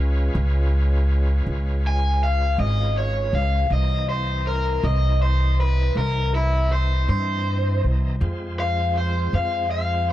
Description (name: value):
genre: slow blues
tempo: 53 BPM (dotted quarters)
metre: 12/8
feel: straight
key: unclear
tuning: A4 = 436 Hz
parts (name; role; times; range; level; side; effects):
- bright tonewheel organ; sustained chords; 0.0-10.1 s; E3 to Bb5; -33 LUFS; equal; slow rotary speaker, overdrive
- upright bass; bass; 0.0-10.1 s; Ab1 to G2; -20 LUFS; equal; none
- raw garage guitar; melody; 1.9-10.1 s; E4 to Ab5; -25 LUFS; left 1 dB; overdrive
room: small room ambience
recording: dark, warm production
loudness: -19 LUFS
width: side -14 dB against mid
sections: 0.0-10.1 A section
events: overdriven electric guitar solo 0.0-10.1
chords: 0.0 Db7; 3.7 C7#9; 8.2 Fm